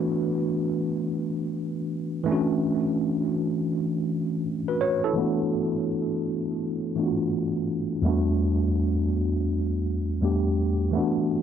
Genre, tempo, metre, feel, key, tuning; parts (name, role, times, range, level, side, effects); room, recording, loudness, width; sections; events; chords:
hip hop; 83 BPM; 4/4; swing 64% on 16ths; D major; A4 = 437 Hz
barky tine electric piano; solo; 0.0-11.4 s; E2 to C#5; -23 LUFS; equal; medium stereo tremolo, cassette tape, tape echo
moderate plate reverb, RT60 2.4 s; low-pass filter; -24 LUFS; side -8 dB against mid
0.0-5.2 A section; 5.2-11.4 B section
0.0 D69; 2.3 Dmaj7; 5.2 D69; 8.1 Em11